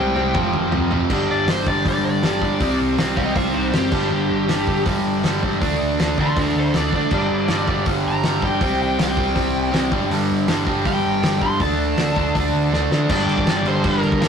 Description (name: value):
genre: punk rock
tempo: 160 BPM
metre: 4/4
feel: straight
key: unclear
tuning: A4 = 440 Hz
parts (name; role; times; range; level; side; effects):
- biting overdriven guitar; melody; 0.0-14.3 s; Eb4 to C6; -24 LUFS; left 2 dB; none
- biting overdriven guitar; riff; 0.0-14.3 s; F2 to D4; -20 LUFS; right 1 dB; none
- overdriven picked electric bass; bass; 0.0-14.3 s; F1 to D3; -26 LUFS; left 1 dB; none
- loose indie drum kit; drums; 0.2-14.3 s; crash cymbal, hi-hat, kick drum, snare drum, toms; -24 LUFS; left 1 dB; none
room: light reverb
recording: rough rehearsal-room recording, tube saturation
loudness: -17 LUFS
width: side -7 dB against mid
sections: 0.0-1.1 A section; 1.1-13.1 B section; 13.1-14.3 A section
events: drum fill 0.0-1.1, 12.7-13.1; overdriven electric guitar solo 1.1-13.1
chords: 0.4 F5; 1.1 G5; 2.6 Cm; 3.9 G5; 5.6 D5; 7.1 Gm; 8.6 C5; 9.9 G5; 11.6 D5; 13.1 Gm